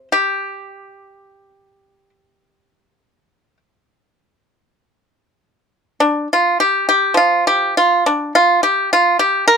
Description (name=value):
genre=chinese traditional, Chinese solo plucked strings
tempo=48-54 BPM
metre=4/4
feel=rubato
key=unclear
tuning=A4 = 439 Hz
part: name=pipa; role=solo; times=0.0-9.6 s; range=C3 to Bb4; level=-13 LUFS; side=equal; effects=none
room=light reverb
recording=close, detailed microphones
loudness=-13 LUFS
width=side -6 dB against mid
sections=0.0-4.8 A section; 4.8-9.6 B section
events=none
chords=none